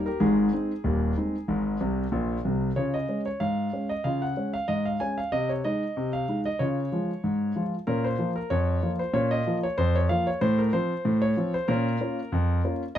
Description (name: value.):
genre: ragtime piano.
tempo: 94 BPM.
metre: 2/4.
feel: swing 54% on 16ths.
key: Db major.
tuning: A4 = 439 Hz.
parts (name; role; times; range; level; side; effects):
warm concert grand piano; solo; 0.0-13.0 s; Eb1 to Ab5; -24 LUFS; equal; none.
room: light reverb.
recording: close, detailed microphones.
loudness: -24 LUFS.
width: side -10 dB against mid.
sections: 0.0-2.8 A section; 2.8-13.0 B section.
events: grand piano fill 1.8-2.8.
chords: 0.2 Ab; 2.8 Db; 5.3 Ab/C; 6.6 Db; 7.9 Bbm; 10.4 F/A; 11.7 Bbm.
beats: | 0.21 0.85 | 1.49 2.13 | 2.78 3.42 | 4.05 4.69 | 5.33 5.97 | 6.60 7.24 | 7.88 8.51 | 9.15 9.79 | 10.42 11.06 | 11.69 12.33 | 12.97.